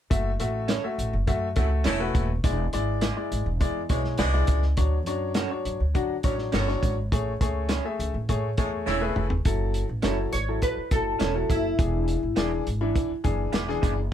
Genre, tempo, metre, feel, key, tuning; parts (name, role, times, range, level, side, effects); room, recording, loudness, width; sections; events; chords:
uptempo 1960s-style soul; 103 BPM; 4/4; straight; F# minor; A4 = 442 Hz
clear baby grand piano; accompaniment; 0.1-14.0 s; E3 to E5; -29 LUFS; left 3 dB
upright bass; bass; 0.1-14.1 s; D#1 to D3; -27 LUFS; equal
warm soul drum kit; drums; 0.1-14.0 s; hi-hat, kick drum, snare drum, toms; -26 LUFS; equal
electric guitar through a small old amp; stabs; 0.7-13.9 s; B3 to D5; -31 LUFS; right 8 dB
bright saxophone section; second line; 1.6-9.3 s; A2 to E4; -31 LUFS; right 1 dB
oud; melody; 10.3-12.6 s; E4 to C#5; -28 LUFS; left 2 dB
light reverb; band playing live in one room; -23 LUFS; side -10 dB against mid
0.1-9.5 A section; 9.5-14.1 B section
drum fill 8.9-9.5
0.1 F#m7; 2.4 E7; 4.8 Dmaj7; 7.1 Amaj7; 9.5 F#m7; 11.8 E7